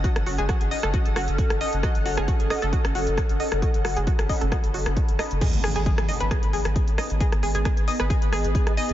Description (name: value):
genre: driving peak-time techno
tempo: 134 BPM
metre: 4/4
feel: straight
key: G# phrygian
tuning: A4 = 439 Hz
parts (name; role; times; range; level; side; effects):
- analog pluck; riff; 0.0-8.8 s; F#4 to D#5; -29 LUFS; equal; chorus, sidechain pumping, diffuse ambient delay
- saturated sub bass; bass; 0.0-8.9 s; F#1 to G#1; -28 LUFS; equal; overdrive, sidechain pumping, low-pass filter
- electronic kick drum; drums; 0.0-8.6 s; none; -23 LUFS; equal; none
- techno drum kit; drums; 0.0-8.9 s; crash cymbal, hi-hat, rim click; -32 LUFS; equal; none
- granular cloud pad; texture; 0.0-8.9 s; B3 to B5; -30 LUFS; equal; built-in reverb, ensemble chorus, sidechain pumping
- impact; sound effects; 5.4-7.2 s; none; -33 LUFS; equal; none
room: light reverb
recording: nothing above 7.5 kHz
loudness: -21 LUFS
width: side -13 dB against mid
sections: 0.0-5.4 A section; 5.4-8.9 B section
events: drop 5.4-8.9; impact 5.4-7.2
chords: 0.0 F#m; 5.4 G#m